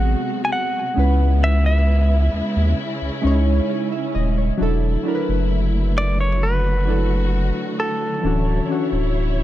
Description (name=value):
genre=R&B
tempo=66 BPM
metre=4/4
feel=straight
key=unclear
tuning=A4 = 440 Hz
part: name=direct-recorded clean electric guitar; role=melody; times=0.0-9.4 s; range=A4 to G#5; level=-24 LUFS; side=equal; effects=ping-pong delay
part: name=warm analog keys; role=accompaniment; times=0.0-9.4 s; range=E3 to E5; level=-24 LUFS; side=equal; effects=chorus
part: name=dark symphonic string section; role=sustained chords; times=0.0-9.4 s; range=B#2 to C#5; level=-27 LUFS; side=equal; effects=none
part: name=saturated sub bass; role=bass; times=0.0-9.4 s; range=D1 to D#2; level=-18 LUFS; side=equal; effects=none
room=digital ambience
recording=dark, warm production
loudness=-17 LUFS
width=side -13 dB against mid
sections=0.0-4.6 A section; 4.6-9.4 B section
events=none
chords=0.0 G#7b9; 1.0 C#m7; 4.6 E9sus4; 8.2 Dmaj9